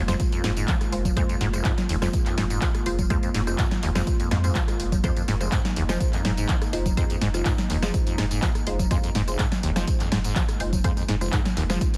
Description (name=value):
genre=acid house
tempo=124 BPM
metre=4/4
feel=straight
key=F minor pentatonic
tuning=A4 = 440 Hz
part: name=dark analog pad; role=sustained chords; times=0.0-12.0 s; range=Ab3 to F4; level=-36 LUFS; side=equal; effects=chorus, phaser, sidechain pumping
part: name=liquid acid bass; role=riff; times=0.0-12.0 s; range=F1 to F3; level=-31 LUFS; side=equal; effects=lush chorus, sidechain pumping, digital delay
part: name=saturated sub bass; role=bass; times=0.0-11.8 s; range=F1 to F2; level=-31 LUFS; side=equal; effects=sidechain pumping
part: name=filtered dub chord stab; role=stabs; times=0.1-12.0 s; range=Ab3 to C5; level=-36 LUFS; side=equal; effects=phaser, analog chorus, digital delay
part: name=punchy analog drum machine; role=drums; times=0.1-12.0 s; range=congas, handclaps, hi-hat, rim click, snare drum, tambourine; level=-32 LUFS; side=equal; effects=none
part: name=dusty soul sampler-style drum kit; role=drums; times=0.2-11.9 s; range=hi-hat, snare drum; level=-46 LUFS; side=equal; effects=none
part: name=electronic kick drum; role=drums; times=0.2-11.9 s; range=none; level=-28 LUFS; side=equal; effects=none
room=digital ambience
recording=heavily compressed radio sound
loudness=-24 LUFS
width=mono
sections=0.0-12.0 A section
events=none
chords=0.0 Fm